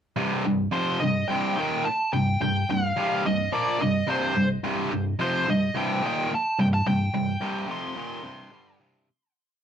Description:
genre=rock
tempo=108 BPM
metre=4/4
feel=straight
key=C dorian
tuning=A4 = 440 Hz
part: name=tight distorted guitar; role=riff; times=0.2-9.1 s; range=C2 to Bb3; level=-24 LUFS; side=equal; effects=distortion
part: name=nasal lead guitar with a parked wah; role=melody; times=0.7-8.8 s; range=C5 to C6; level=-27 LUFS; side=equal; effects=overdrive
room=wet studio reverb, RT60 0.5 s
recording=none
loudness=-23 LUFS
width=side -8 dB against mid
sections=0.2-9.1 riff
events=fade-out 6.9-9.1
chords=0.2 Cm

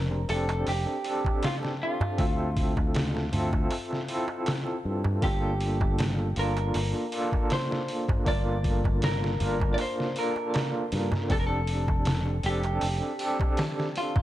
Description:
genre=trip hop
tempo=79 BPM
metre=4/4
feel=swing 53% on 16ths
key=G dorian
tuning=A4 = 440 Hz
part: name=semi-hollow electric guitar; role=melody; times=0.0-14.2 s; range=F4 to D5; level=-33 LUFS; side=equal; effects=tape echo
part: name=overdriven tine electric piano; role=accompaniment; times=0.0-14.2 s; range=Bb3 to E5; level=-31 LUFS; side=equal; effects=tremolo, low-pass filter, tape echo
part: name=fingered electric bass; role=bass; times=0.0-13.0 s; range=F1 to G2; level=-29 LUFS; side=equal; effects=none
part: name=darbuka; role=percussion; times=0.1-14.2 s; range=none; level=-33 LUFS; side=right 1 dB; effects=none
part: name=trip hop sampler-style drum kit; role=drums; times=0.3-14.2 s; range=hi-hat, kick drum, snare drum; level=-30 LUFS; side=equal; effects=vintage 12-bit sampler grit
room=light reverb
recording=dark, warm production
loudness=-25 LUFS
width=side -14 dB against mid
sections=0.0-14.2 A section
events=none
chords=0.0 F6; 2.2 Dm7; 5.2 Gm7; 11.3 F6

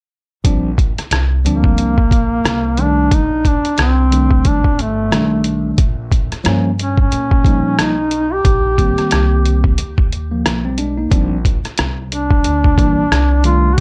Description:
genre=hip hop, jazz-hop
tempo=90 BPM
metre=4/4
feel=swing 59% on 16ths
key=Bb major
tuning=A4 = 438 Hz
part: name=tine electric piano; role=accompaniment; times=0.4-13.7 s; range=Eb3 to Eb4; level=-21 LUFS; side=equal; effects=none
part: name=trip hop sampler-style drum kit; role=drums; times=0.4-13.8 s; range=hi-hat, kick drum, rim click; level=-17 LUFS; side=equal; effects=none
part: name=upright bass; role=bass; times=0.5-13.8 s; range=G1 to Bb2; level=-21 LUFS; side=equal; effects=none
part: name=warm duduk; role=melody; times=1.5-13.8 s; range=A3 to G4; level=-20 LUFS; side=equal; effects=tape echo, plate reverb
room=light reverb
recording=dark, warm production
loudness=-15 LUFS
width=mono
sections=0.4-13.8 A section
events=none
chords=0.4 Bb69; 2.4 C5; 3.1 Cm13; 5.8 Eb7/Bb; 8.4 Bbsus4; 11.1 Bb69; 13.1 C5

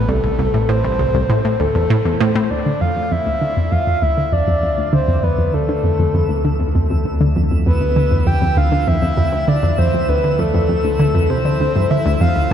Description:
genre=ambient, sequencer-driven space music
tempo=99 BPM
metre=4/4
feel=straight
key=D dorian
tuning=A4 = 439 Hz
part: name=breathy flute-like synth lead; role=melody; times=0.0-12.5 s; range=A4 to G5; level=-20 LUFS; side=left 1 dB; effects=chorus, analog delay
part: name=analog pluck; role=riff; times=0.0-12.5 s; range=C2 to D3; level=-17 LUFS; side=equal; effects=chorus, analog delay
part: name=fat analog bass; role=bass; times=0.0-12.5 s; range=A1 to D2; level=-22 LUFS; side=equal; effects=none
part: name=twinkling granular texture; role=texture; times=3.2-12.5 s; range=E3 to E6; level=-29 LUFS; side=equal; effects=built-in reverb
room=wet cathedral reverb, RT60 5.4 s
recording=dreamy mix soaked in reverb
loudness=-14 LUFS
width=side -9 dB against mid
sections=0.0-2.5 A section; 2.5-12.5 B section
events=filter sweep on synth arpeggio sound 0.0-2.5, 2.5-12.5; fade-in on synth texture 2.5-12.5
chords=0.0 Am; 2.5 Dm

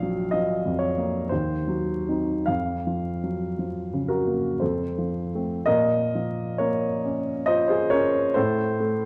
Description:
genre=classical, romantic nocturne for solo piano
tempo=49-71 BPM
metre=3/4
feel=rubato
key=Bb minor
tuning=A4 = 440 Hz
part: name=warm upright piano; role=solo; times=0.0-9.1 s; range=Bb1 to F5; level=-25 LUFS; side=equal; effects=none
room=wet recital hall reverb, RT60 1.6 s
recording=vinyl crackle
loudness=-25 LUFS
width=mono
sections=0.0-5.7 A section; 5.7-9.1 A section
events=none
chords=0.0 Bb5; 1.3 Cdim/Eb; 2.5 Bbm/F; 4.6 F; 5.7 Bbm; 8.4 F/A (rootless)

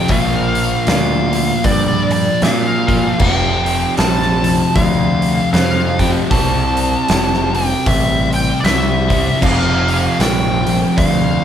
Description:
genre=stoner and doom metal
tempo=77 BPM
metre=4/4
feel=swing 59% on 8ths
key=unclear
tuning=A4 = 440 Hz
part: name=fuzz lead guitar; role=melody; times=0.0-11.4 s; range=D5 to A5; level=-19 LUFS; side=equal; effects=wah, distortion
part: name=crunchy overdriven guitar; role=riff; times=0.0-11.4 s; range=F2 to C4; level=-22 LUFS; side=equal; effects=none
part: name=thick fuzz guitar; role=riff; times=0.0-11.4 s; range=F2 to C4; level=-22 LUFS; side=left 6 dB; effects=distortion
part: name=thick fuzz guitar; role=riff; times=0.0-11.4 s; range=F2 to C4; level=-23 LUFS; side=right 4 dB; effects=distortion
part: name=growling picked electric bass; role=bass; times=0.1-11.4 s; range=F1 to Bb2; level=-19 LUFS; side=right 1 dB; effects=overdrive
part: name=oversized low-tuned drum kit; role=drums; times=0.1-11.2 s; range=crash cymbal, hi-hat, kick drum, snare drum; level=-19 LUFS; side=equal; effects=none
room=moderate large studio reverb, RT60 1.2 s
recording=band playing live in one room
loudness=-12 LUFS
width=side -9 dB against mid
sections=0.0-11.4 A section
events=none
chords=0.1 Bb; 3.2 F; 6.3 C; 9.4 F5

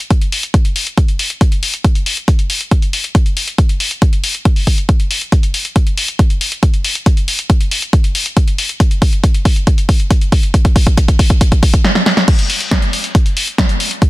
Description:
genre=trance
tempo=138 BPM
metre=4/4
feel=straight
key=none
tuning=none
part: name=punchy analog drum machine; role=drums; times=0.0-14.1 s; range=crash cymbal, hi-hat, snare drum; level=-17 LUFS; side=left 1 dB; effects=sidechain pumping on hats, sidechain pumping on cymbals
part: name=electronic kick drum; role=drums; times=0.1-14.1 s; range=none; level=-11 LUFS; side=equal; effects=overdrive
room=digital ambience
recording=dense, heavily limited modern master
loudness=-11 LUFS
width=side -19 dB against mid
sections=0.0-12.3 A section; 12.3-14.1 B section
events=build-up 0.0-12.3; drum fill 5.3-11.8, 11.8-12.3; drop 12.3-14.1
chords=none

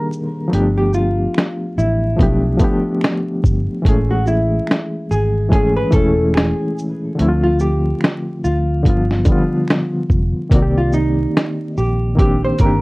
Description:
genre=lo-fi hip hop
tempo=72 BPM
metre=4/4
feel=swing 59% on 16ths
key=unclear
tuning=A4 = 440 Hz
part: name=vintage hollow-body jazz guitar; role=melody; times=0.0-12.8 s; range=Eb4 to C5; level=-21 LUFS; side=equal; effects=plate reverb
part: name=barky reed electric piano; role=accompaniment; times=0.0-12.8 s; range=D3 to D5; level=-19 LUFS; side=left 1 dB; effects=overdrive, fast tremolo, cassette tape
part: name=lo-fi sampler-style drum kit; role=drums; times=0.1-12.8 s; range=hi-hat, kick drum, shaker, snare drum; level=-16 LUFS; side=equal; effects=none
part: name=vintage muted fingered electric bass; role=bass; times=0.5-12.8 s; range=E1 to D2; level=-18 LUFS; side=equal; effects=none
part: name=finger snap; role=percussion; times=1.3-9.9 s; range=none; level=-35 LUFS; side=right 2 dB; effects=none
room=light reverb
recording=worn, warbling old tape, cassette tape, vinyl crackle, warbly pitch drift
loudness=-14 LUFS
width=side -23 dB against mid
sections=0.0-10.5 A section; 10.5-12.8 A section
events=none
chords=0.0 Ebmaj7; 0.5 G9; 3.8 Amaj7; 7.2 Dm7; 8.8 G7; 10.5 Cm9

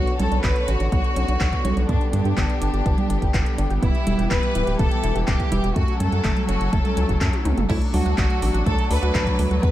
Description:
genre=italo disco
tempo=124 BPM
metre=4/4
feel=straight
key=unclear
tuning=A4 = 440 Hz
part: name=clear studio violin section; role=melody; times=0.0-9.7 s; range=D4 to B4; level=-27 LUFS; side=equal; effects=digital delay
part: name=clear symphonic string section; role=sustained chords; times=0.0-9.7 s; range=D3 to C#5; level=-28 LUFS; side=left 2 dB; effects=none
part: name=analog pluck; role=arpeggios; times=0.0-9.7 s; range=A3 to G4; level=-32 LUFS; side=right 2 dB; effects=chorus, digital delay
part: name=round analog bass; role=bass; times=0.0-9.7 s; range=D1 to G2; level=-23 LUFS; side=equal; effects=none
part: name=house drum kit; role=drums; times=0.1-9.7 s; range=congas, crash cymbal, handclaps, hi-hat, toms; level=-28 LUFS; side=right 3 dB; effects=studio reverb
part: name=electronic kick drum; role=drums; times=0.4-9.7 s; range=none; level=-23 LUFS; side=equal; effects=studio reverb
room=light reverb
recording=dark, warm production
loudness=-19 LUFS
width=side -14 dB against mid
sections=0.0-7.7 A section; 7.7-9.7 B section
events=drum fill 7.3-7.7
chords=0.0 Bmadd9; 1.9 G; 3.8 Em; 5.8 F#m; 7.7 D

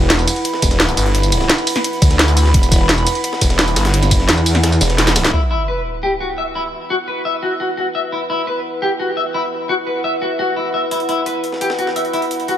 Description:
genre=dark technical drum and bass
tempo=172 BPM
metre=4/4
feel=straight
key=E minor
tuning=A4 = 440 Hz
part: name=dark analog pad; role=sustained chords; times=0.0-12.6 s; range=E4 to B5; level=-23 LUFS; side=right 1 dB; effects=wide subtle chorus, sidechain pumping
part: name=snarling distorted saw bass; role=bass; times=0.0-5.3 s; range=E1 to D2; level=-16 LUFS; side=equal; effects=distortion, tube saturation, sidechain pumping
part: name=breakbeat sampler-style drum kit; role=drums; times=0.1-5.3, 10.9-12.6 s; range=hi-hat, snare drum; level=-26 LUFS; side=equal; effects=high-pass filter on hats, high-pass filter on snare
part: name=drum and bass drum kit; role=drums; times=0.1-5.4 s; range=crash cymbal, hi-hat, ride cymbal, snare drum, tambourine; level=-17 LUFS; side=equal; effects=low-pass filter on hats, low-pass filter on cymbals, low-pass filter on perc, low-pass filter on snare, low-pass filter on room
part: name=electronic kick drum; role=drums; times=0.6-4.2 s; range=none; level=-15 LUFS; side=equal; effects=overdrive
part: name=metallic wobble bass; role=bass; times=4.3-4.8 s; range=E2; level=-14 LUFS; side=equal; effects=distortion, chorus
part: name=clean electric guitar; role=arpeggios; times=5.3-12.5 s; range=E4 to E5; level=-19 LUFS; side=left 2 dB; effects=wide subtle chorus, sidechain pumping, tape echo
part: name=sub drop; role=sound effects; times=5.3-6.7 s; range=none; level=-22 LUFS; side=equal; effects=none
room=light reverb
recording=none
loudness=-14 LUFS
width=side -10 dB against mid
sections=0.0-5.3 A section; 5.3-12.6 B section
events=drop 0.0-5.3; kick drops out 4.6-5.3; drum fill 5.0-5.3; impact 5.3-6.7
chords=0.0 Emadd9; 5.3 Esus2

